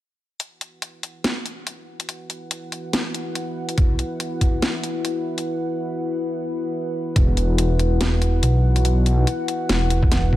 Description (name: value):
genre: deep dubstep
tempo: 142 BPM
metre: 4/4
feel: swing 57% on 16ths, half-time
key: unclear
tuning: A4 = 440 Hz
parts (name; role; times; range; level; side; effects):
- dark analog pad; sustained chords; 0.4-10.4 s; E4 to F#5; -26 LUFS; left 1 dB; chorus
- garage drum kit; drums; 0.4-10.2 s; hi-hat, snare drum; -25 LUFS; equal; none
- electronic kick drum; drums; 3.8-4.5, 7.2-7.3, 10.0-10.4 s; none; -18 LUFS; equal; none
- dark detuned saw bass; bass; 7.2-10.4 s; E1 to B1; -18 LUFS; equal; none
room: light reverb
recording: none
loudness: -20 LUFS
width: side -15 dB against mid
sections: 0.4-7.2 A section; 7.2-10.4 B section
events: filter sweep on analog synth pad 0.4-7.2; break 5.5-7.2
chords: 0.4 E5